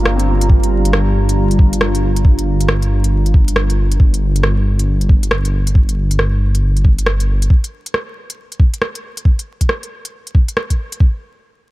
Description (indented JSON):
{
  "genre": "future garage",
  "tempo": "137 BPM",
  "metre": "4/4",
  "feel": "swing 63% on 16ths",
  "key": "G minor",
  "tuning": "A4 = 438 Hz",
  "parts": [
    { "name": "felt-muted upright piano", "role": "accompaniment", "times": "0.0-0.9 s", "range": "G3 to C4", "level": "-25 LUFS", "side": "right 1 dB", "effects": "sidechain pumping, low-pass filter, digital delay" },
    { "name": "deep dark ambient pad", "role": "sustained chords", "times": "0.0-4.0 s", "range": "G3 to Bb5", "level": "-21 LUFS", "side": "right 1 dB", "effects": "chorus, built-in reverb, sidechain pumping" },
    { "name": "dark detuned saw bass", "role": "bass", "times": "0.0-7.5 s", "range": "G1", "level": "-15 LUFS", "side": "equal", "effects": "sidechain pumping" },
    { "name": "organic electronic drum kit", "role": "drums", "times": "0.1-11.0 s", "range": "hi-hat, rim click", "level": "-20 LUFS", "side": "equal", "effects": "none" },
    { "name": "electronic kick drum", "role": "drums", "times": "0.5-11.1 s", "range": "none", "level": "-10 LUFS", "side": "equal", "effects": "none" }
  ],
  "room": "little or no reverb",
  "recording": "dark, warm production, vinyl crackle",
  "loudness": "-12 LUFS",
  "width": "side -18 dB against mid",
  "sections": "0.0-11.0 A section",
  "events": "none",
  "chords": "0.0 Gm7; 11.0 N.C."
}